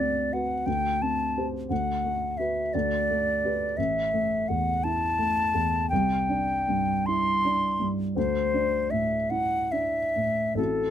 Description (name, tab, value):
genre	classical, impressionist duo for flute and grand piano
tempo	45-60 BPM (dotted quarters)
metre	6/8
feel	rubato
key	unclear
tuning	A4 = 439 Hz
part	concert flute	melody	0.0-10.9 s	A4 to C6	-26 LUFS	left 1 dB	none
part	dark baby grand piano	accompaniment	0.0-10.9 s	A1 to C5	-28 LUFS	equal	none
room	little or no reverb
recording	close, detailed microphones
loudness	-24 LUFS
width	side -10 dB against mid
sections	0.0-10.9 A section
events	none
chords	0.0 D6; 0.7 Csus2/D; 1.7 Bm7/D; 2.7 Gadd9/D; 3.8 A5; 5.9 Cadd9; 8.2 Dsus2